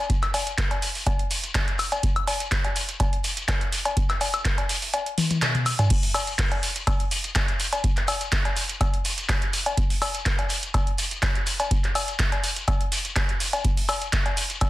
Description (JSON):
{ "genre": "house", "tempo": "124 BPM", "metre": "4/4", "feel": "swing 53% on 16ths", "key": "none", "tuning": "none", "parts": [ { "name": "booming analog drum machine", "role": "drums", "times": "0.1-14.7 s", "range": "cowbell, crash cymbal, handclaps, hi-hat, toms, woodblock", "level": "-25 LUFS", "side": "left 1 dB", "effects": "none" }, { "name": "electronic kick drum", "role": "drums", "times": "0.1-14.7 s", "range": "none", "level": "-25 LUFS", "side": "equal", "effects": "none" }, { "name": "shekere", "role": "percussion", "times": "0.1-14.7 s", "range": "none", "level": "-33 LUFS", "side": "left 2 dB", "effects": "none" } ], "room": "little or no reverb", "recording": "dense, heavily limited modern master", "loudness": "-22 LUFS", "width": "side -16 dB against mid", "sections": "0.0-5.9 A section; 5.9-14.7 B section", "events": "kick drops out 4.9-5.9; drum fill 5.2-5.9; band accent 5.4; drop 5.9-14.7", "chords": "none" }